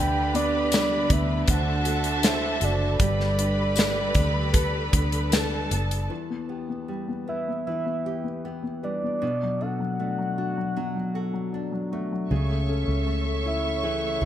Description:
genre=pop ballad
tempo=78 BPM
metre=4/4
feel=straight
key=G major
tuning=A4 = 440 Hz
part: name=soft octave-layered synth lead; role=melody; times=0.0-14.3 s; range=D5 to G5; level=-29 LUFS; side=right 2 dB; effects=chorus
part: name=warm studio violin section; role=second line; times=0.0-6.1 s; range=A4 to B5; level=-32 LUFS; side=equal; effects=ping-pong delay
part: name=warm concert grand piano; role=accompaniment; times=0.0-14.3 s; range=B2 to C5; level=-30 LUFS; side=left 5 dB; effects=none
part: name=warm studio string section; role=sustained chords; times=0.0-6.1, 12.3-14.3 s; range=D3 to C#6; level=-32 LUFS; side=right 1 dB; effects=none
part: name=nylon-string guitar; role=arpeggios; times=0.0-14.3 s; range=E2 to A4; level=-34 LUFS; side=right 7 dB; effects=none
part: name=vintage muted fingered electric bass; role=bass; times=0.0-6.1, 12.3-14.3 s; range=F#1 to D2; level=-27 LUFS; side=equal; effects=none
part: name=modern studio drum kit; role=drums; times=0.3-6.1 s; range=hi-hat, kick drum, snare drum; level=-24 LUFS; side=equal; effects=gated reverb
part: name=tambourine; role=percussion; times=0.7-5.5 s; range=none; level=-34 LUFS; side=left 9 dB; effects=none
room=light reverb, small room ambience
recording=bright 1980s-style digital production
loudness=-23 LUFS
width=side -11 dB against mid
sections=0.0-6.1 A section; 6.1-14.3 B section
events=none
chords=0.0 G/D; 1.5 D7; 3.0 Gadd9; 6.1 Em; 9.2 Bm7; 12.3 A/C#

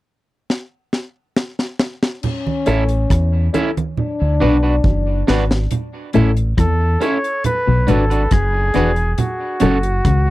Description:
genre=roots reggae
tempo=69 BPM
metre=4/4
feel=straight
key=A major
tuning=A4 = 440 Hz
part: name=deep reggae drum kit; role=drums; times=0.5-10.3 s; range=crash cymbal, hi-hat, kick drum, rim click, snare drum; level=-19 LUFS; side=equal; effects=none
part: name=dark trombone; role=second line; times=2.2-5.3 s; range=C#4 to D4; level=-23 LUFS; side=left 4 dB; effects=tape echo
part: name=congas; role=percussion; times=2.2-10.3 s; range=none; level=-22 LUFS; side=right 3 dB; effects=none
part: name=electric guitar at the edge of break-up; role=accompaniment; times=2.7-9.8 s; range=C#4 to B4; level=-22 LUFS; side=right 4 dB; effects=tape echo
part: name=dark upright piano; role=stabs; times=2.7-9.8 s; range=C#4 to B4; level=-22 LUFS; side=left 3 dB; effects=none
part: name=deep dub fingered electric bass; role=bass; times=2.7-10.3 s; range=E1 to E2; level=-17 LUFS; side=equal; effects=none
part: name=semi-hollow electric guitar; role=riff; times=6.1-10.3 s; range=E2 to E3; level=-20 LUFS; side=left 5 dB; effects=tube saturation
part: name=clear flugelhorn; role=melody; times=6.6-10.3 s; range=F#4 to C#5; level=-20 LUFS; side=equal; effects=tape echo
room=little or no reverb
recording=dry, close 1970s-style studio recording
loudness=-15 LUFS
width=side -17 dB against mid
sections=0.0-2.2 A section; 2.2-5.7 B section; 5.7-10.3 C section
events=drum fill 0.5-2.2, 4.0-5.7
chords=0.0 N.C.; 2.2 A; 4.0 Bm; 5.7 A; 7.4 Bm; 9.2 F#m

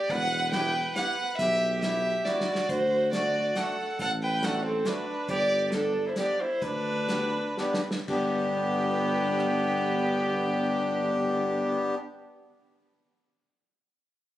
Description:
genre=alpine folk, alpine dance band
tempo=116-140 BPM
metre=3/4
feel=straight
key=G major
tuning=A4 = 440 Hz
part: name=dark fiddle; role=melody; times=0.0-11.9 s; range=G4 to G5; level=-28 LUFS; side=right 1 dB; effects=none
part: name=clear trumpet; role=second line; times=0.0-12.0 s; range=B3 to B4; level=-35 LUFS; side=right 4 dB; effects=none
part: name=dark tuba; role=bass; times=0.1-12.0 s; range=E1 to D2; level=-32 LUFS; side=left 1 dB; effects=none
part: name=unplugged drum kit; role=drums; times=0.1-9.5 s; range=crash cymbal, hi-hat, kick drum, rim click, snare drum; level=-36 LUFS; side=equal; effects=none
part: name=accordion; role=accompaniment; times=0.5-12.0 s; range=A3 to G4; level=-30 LUFS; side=left 2 dB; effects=none
room=light reverb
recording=recorded on a phone in the room, club reverb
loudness=-25 LUFS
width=side -13 dB against mid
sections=0.0-8.1 A section; 8.1-11.2 B section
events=drum fill 2.3-2.7, 7.6-8.1; slowing down 5.3-8.1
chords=0.1 Emadd9; 2.7 D7; 5.3 G

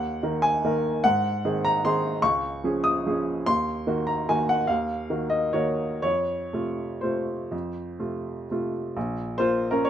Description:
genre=classical, piano waltz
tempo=119-156 BPM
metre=3/4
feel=rubato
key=unclear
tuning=A4 = 440 Hz
part: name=warm upright piano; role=solo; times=0.0-9.9 s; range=Bb1 to Eb6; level=-23 LUFS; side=equal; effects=none
room=light reverb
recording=none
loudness=-23 LUFS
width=side -10 dB against mid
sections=0.0-9.0 A section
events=none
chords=0.0 Ebm; 1.0 Ab7; 2.2 Db; 3.5 Ebm; 6.0 F; 9.0 Bbm

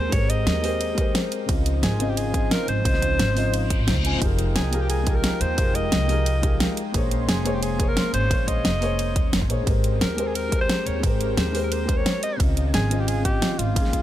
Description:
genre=liquid drum and bass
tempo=176 BPM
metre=4/4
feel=straight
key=unclear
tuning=A4 = 440 Hz
part: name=breathy alto saxophone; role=melody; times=0.0-14.0 s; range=F4 to Eb5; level=-28 LUFS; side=equal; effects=vintage 12-bit sampler grit, dub echo
part: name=felt-muted upright piano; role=accompaniment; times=0.0-14.0 s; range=Db3 to Ab5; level=-28 LUFS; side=left 2 dB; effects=ping-pong delay
part: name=airy breathy pad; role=sustained chords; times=0.0-14.0 s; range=Eb3 to C6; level=-32 LUFS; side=equal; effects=chorus, sidechain pumping
part: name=upright bass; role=bass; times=0.0-14.0 s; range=F1 to Eb2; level=-25 LUFS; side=equal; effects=none
part: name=electronic kick drum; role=drums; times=0.1-14.0 s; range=none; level=-24 LUFS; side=equal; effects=none
part: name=pop drum kit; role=drums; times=0.1-14.0 s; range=hi-hat, ride cymbal, snare drum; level=-26 LUFS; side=right 1 dB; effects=none
part: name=reverse cymbal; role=sound effects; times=3.7-4.2 s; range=none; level=-32 LUFS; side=left 4 dB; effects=none
room=small room ambience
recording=none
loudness=-20 LUFS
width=side -13 dB against mid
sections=0.0-14.0 A section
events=reverse cymbal 3.7-4.2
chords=0.0 Abmaj9; 1.5 Dbmaj9; 4.2 Fm11; 6.8 Bbm9; 9.7 Abmaj9; 12.4 Dbmaj9

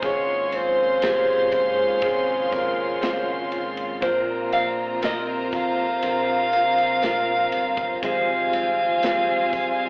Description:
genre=pop ballad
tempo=60 BPM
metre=4/4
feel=straight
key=unclear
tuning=A4 = 439 Hz
part: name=mellow soprano saxophone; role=melody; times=0.0-9.9 s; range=C5 to F5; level=-24 LUFS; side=equal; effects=plate reverb
part: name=warm studio violin section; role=second line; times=0.0-9.9 s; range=Db4 to C6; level=-31 LUFS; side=equal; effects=plate reverb, slapback echo, digital delay
part: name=clear concert grand piano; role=accompaniment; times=0.0-9.9 s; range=Ab2 to C5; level=-32 LUFS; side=equal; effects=plate reverb, slapback echo
part: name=dark studio string section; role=sustained chords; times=0.0-9.9 s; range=C3 to F4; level=-37 LUFS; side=equal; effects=plate reverb
part: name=picked steel-string acoustic guitar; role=arpeggios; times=0.0-9.9 s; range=Ab2 to Bb4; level=-35 LUFS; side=equal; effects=plate reverb
part: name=fingered electric bass with an envelope filter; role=bass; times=0.0-9.9 s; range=G1 to Ab2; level=-40 LUFS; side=equal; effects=none
part: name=modern studio drum kit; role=drums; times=0.0-9.8 s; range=kick drum, ride cymbal, snare drum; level=-37 LUFS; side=equal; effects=none
part: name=tambourine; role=percussion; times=0.0-9.8 s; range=none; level=-53 LUFS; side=equal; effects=none
room=wet club reverb, RT60 0.6 s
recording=live gig heard through the venue's PA, club reverb, telephone sound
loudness=-23 LUFS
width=mono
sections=0.0-9.9 A section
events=none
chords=0.0 Dbmaj7/Ab; 4.0 Bbsus2; 8.0 Fmadd9/Ab

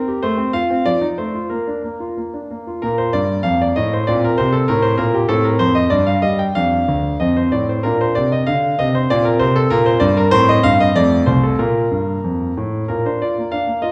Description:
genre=classical-period piano sonatina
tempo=90-98 BPM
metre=2/4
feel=rubato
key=Bb major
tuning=A4 = 436 Hz
part: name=clear concert grand piano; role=solo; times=0.0-13.9 s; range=C2 to G5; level=-17 LUFS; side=equal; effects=none
room=wet recital hall reverb, RT60 1.4 s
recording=small room reverb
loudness=-17 LUFS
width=mono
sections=0.0-2.8 A section; 2.8-12.9 B section; 12.9-13.9 B section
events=none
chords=0.2 F/A; 0.9 F7; 1.5 Bb; 2.8 Bb5; 4.1 Bbmaj13; 5.3 F/A; 5.9 G5; 6.5 Dm; 7.2 F; 7.8 Bb; 9.1 C5/Bb; 10.3 F9; 11.0 F; 11.6 Bb5; 12.9 Bb

